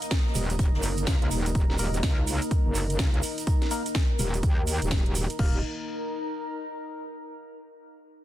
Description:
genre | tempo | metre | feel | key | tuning
bass house | 125 BPM | 4/4 | swing 62% on 16ths | unclear | A4 = 440 Hz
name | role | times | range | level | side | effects
sweeping resonant pad | sustained chords | 0.0-5.6 s | Bb3 to Eb5 | -38 LUFS | equal | chorus, sidechain pumping
house drum kit | drums | 0.0-5.5 s | crash cymbal, hi-hat, snare drum | -34 LUFS | right 1 dB | studio reverb
unplugged drum kit | drums | 0.0-1.4 s | hi-hat, snare drum | -43 LUFS | left 2 dB | none
tube shaker | percussion | 0.0-5.4 s | none | -38 LUFS | right 4 dB | none
warbly tape-like pad | texture | 0.0-7.3 s | Eb4 to Bb5 | -36 LUFS | left 2 dB | chorus, built-in reverb, sidechain pumping
electronic kick drum | drums | 0.1-5.5 s | none | -24 LUFS | equal | studio reverb
metallic wobble bass | bass | 0.3-5.6 s | Eb1 to Eb2 | -28 LUFS | equal | chorus, tube saturation, sidechain pumping
percussive organ stab | stabs | 1.8-5.6 s | Bb3 to Bb4 | -39 LUFS | left 4 dB | chorus, sidechain pumping, dub echo
room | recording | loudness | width
small room ambience | dense, heavily limited modern master | -24 LUFS | side -13 dB against mid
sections
0.0-5.4 A section; 5.4-7.3 B section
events
filter sweep on synth stab 0.0-5.4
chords
0.0 Eb5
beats
0.11 0.59 1.07 | 1.55 2.03 2.51 2.99 | 3.47 3.95 4.43 4.91 | 5.39 5.87 6.35 6.83

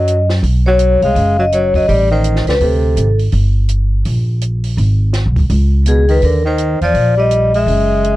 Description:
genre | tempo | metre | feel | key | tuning
jazz, small-group swing and bop | 166 BPM | 4/4 | swing 63% on 8ths | unclear | A4 = 439 Hz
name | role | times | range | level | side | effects
vibraphone with medium hard mallets | melody | 0.0-3.2, 5.9-8.2 s | Ab4 to F5 | -15 LUFS | left 2 dB | none
breathy tenor saxophone | second line | 0.0-3.2, 5.9-8.2 s | Cb3 to Ab3 | -18 LUFS | right 2 dB | none
upright bass | bass | 0.0-8.2 s | F#1 to Gb2 | -13 LUFS | equal | none
compact cocktail drum kit | drums | 0.1-8.1 s | hi-hat, kick drum, snare drum | -25 LUFS | right 1 dB | none
room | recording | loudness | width
little or no reverb | cassette tape | -11 LUFS | side -16 dB against mid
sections
0.0-8.2 A section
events
none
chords
0.4 Bsus2; 1.9 Adim; 2.6 D5; 3.3 Gm; 4.8 Abm; 5.5 Abmadd11/Db; 6.2 Ebmaj9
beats
0.06 | 0.43 0.79 1.15 1.51 | 1.88 2.24 2.60 2.96 | 3.33 3.69 4.05 4.41 | 4.78 5.14 5.50 5.86 | 6.23 6.59 6.95 7.31 | 7.68 8.04

